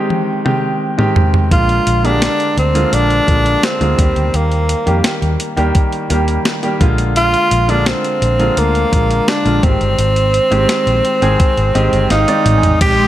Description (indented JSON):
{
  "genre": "1980s-style pop",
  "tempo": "85 BPM",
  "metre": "4/4",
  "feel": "straight",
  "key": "unclear",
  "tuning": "A4 = 439 Hz",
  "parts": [
    { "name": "clear baby grand piano", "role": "accompaniment", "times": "0.0-13.1 s", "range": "D3 to Ab5", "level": "-18 LUFS", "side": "equal", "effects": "none" },
    { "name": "clean 12-bit digital drum machine", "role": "drums", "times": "0.1-13.0 s", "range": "crash cymbal, hi-hat, kick drum, snare drum, toms", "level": "-17 LUFS", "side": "equal", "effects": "none" },
    { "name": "clear tenor saxophone", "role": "melody", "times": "1.5-13.1 s", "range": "Bb3 to G4", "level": "-15 LUFS", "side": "equal", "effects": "ping-pong delay" },
    { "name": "vintage muted fingered electric bass", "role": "bass", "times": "1.5-13.1 s", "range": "G1 to F2", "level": "-16 LUFS", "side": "equal", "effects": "none" },
    { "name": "sweeping resonant pad", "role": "sustained chords", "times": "12.9-13.1 s", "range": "Ab3 to Eb6", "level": "-19 LUFS", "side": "right 1 dB", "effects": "chorus" }
  ],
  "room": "light reverb",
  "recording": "none",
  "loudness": "-11 LUFS",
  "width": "side -13 dB against mid",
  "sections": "0.0-12.8 A section",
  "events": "drum fill 0.1-1.5, 12.1-12.8; grand piano fill 11.4-12.8",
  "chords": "0.0 Abmaj7; 1.5 Bb7; 4.0 Eb; 6.8 Bb7; 9.6 Abmaj7"
}